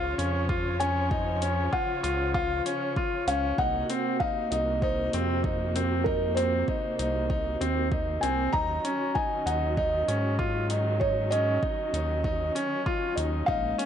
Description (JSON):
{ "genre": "piano and strings electronica", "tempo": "97 BPM", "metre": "4/4", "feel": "straight", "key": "unclear", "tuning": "A4 = 440 Hz", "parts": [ { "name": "felt-muted upright piano", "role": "melody", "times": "0.0-13.9 s", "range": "Bb4 to Bb5", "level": "-30 LUFS", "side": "equal", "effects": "tape echo" }, { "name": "dark studio string section", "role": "sustained chords", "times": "0.0-13.9 s", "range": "C3 to Db5", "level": "-35 LUFS", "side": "equal", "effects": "sidechain pumping" }, { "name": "bright grand piano", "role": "riff", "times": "0.0-13.9 s", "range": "C4 to F4", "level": "-30 LUFS", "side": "equal", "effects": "tape echo" }, { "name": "round analog bass", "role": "bass", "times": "0.0-13.7 s", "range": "Bb1 to Ab2", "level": "-31 LUFS", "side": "equal", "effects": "sidechain pumping" }, { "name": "electronic hi-hat", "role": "drums", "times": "0.2-13.9 s", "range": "none", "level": "-38 LUFS", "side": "left 2 dB", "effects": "overdrive" }, { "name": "electronic kick drum", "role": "drums", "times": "0.5-13.6 s", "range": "none", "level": "-32 LUFS", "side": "equal", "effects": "overdrive" } ], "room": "light reverb, small room ambience", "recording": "nothing above 10.6 kHz", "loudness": "-25 LUFS", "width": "side -9 dB against mid", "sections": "0.0-13.9 A section", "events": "none", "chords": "0.0 Db; 3.6 Cm7b5; 8.5 Ebm7", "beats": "0.50 | 1.11 1.73 2.35 2.97 | 3.59 4.21 4.83 5.44 | 6.06 6.68 7.30 7.92 | 8.54 9.15 9.77 10.39 | 11.01 11.63 12.25 12.87 | 13.48" }